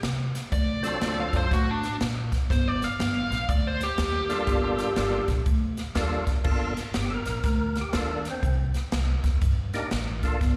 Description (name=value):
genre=electric blues shuffle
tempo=121 BPM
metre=4/4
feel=swing 64% on 8ths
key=G minor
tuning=A4 = 440 Hz
part: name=upright bass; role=bass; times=0.0-10.6 s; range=G1 to C3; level=-30 LUFS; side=equal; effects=none
part: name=swinging big-band drum kit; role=drums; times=0.0-10.6 s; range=crash cymbal, hi-hat, kick drum, snare drum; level=-30 LUFS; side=equal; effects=none
part: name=dark smooth lead guitar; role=melody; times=0.5-5.3 s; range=D4 to E#5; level=-31 LUFS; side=equal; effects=overdrive, slapback echo
part: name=percussive tonewheel organ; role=accompaniment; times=0.8-10.4 s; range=F#3 to Bb4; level=-32 LUFS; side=equal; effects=slow rotary speaker, overdrive, chorus vibrato, slapback echo
room=light reverb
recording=live gig heard through the venue's PA, recital hall reverb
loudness=-26 LUFS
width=mono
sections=0.0-6.5 A section; 6.5-10.6 A section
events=lead electric guitar solo 0.0-6.5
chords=0.0 N.C.; 0.5 D7#9; 2.5 Gm9; 8.4 Cm9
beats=0.03 | 0.53 1.02 1.51 2.01 | 2.50 3.00 3.49 3.98 | 4.48 4.97 5.47 5.96 | 6.46 6.95 7.44 7.94 | 8.43 8.93 9.42 9.92 | 10.41